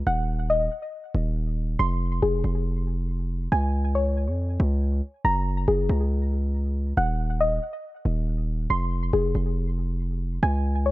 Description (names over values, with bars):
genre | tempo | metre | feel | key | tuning
hip hop, trap | 139 BPM | 4/4 | half-time | F phrygian | A4 = 440 Hz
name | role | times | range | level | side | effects
soft round pluck | arpeggios | 0.0-10.9 s | Ab4 to C6 | -26 LUFS | left 1 dB | chorus, tape echo
distorted 808-style bass | bass | 0.0-10.9 s | Eb1 to F2 | -24 LUFS | equal | distortion
room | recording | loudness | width
little or no reverb | nothing above 8.0 kHz | -23 LUFS | side -18 dB against mid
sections
0.0-10.9 A section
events
none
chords
0.1 Ebm; 1.8 Fm; 3.5 Db; 5.2 Gbadd9; 7.0 Ebm; 8.7 Fm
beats
| 0.07 0.50 0.93 1.36 | 1.79 2.23 2.66 3.09 | 3.52 3.95 4.38 4.82 | 5.25 5.68 6.11 6.54 | 6.97 7.41 7.84 8.27 | 8.70 9.13 9.56 9.99 | 10.43 10.86